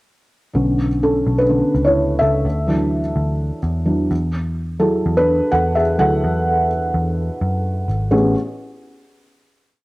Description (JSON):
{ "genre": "piano-driven pop", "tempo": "127 BPM", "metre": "4/4", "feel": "swing 56% on 16ths", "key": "A major", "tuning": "A4 = 440 Hz", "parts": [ { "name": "felt-muted upright piano", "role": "accompaniment", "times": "0.5-8.3 s", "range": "A1 to F#5", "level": "-17 LUFS", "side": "equal", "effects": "none" }, { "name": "vintage muted picked electric bass", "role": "bass", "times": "0.6-8.3 s", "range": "G#1 to F#2", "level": "-20 LUFS", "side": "equal", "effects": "none" } ], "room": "moderate spring reverb, RT60 1.6 s, small room ambience", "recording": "home recording on cassette", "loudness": "-16 LUFS", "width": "side -20 dB against mid", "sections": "0.6-8.1 verse; 8.1-9.8 final chord", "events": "felt piano solo 0.6-8.1", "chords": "0.6 Bmadd9; 2.4 Dadd9; 4.1 Eadd9; 8.1 Amaj9" }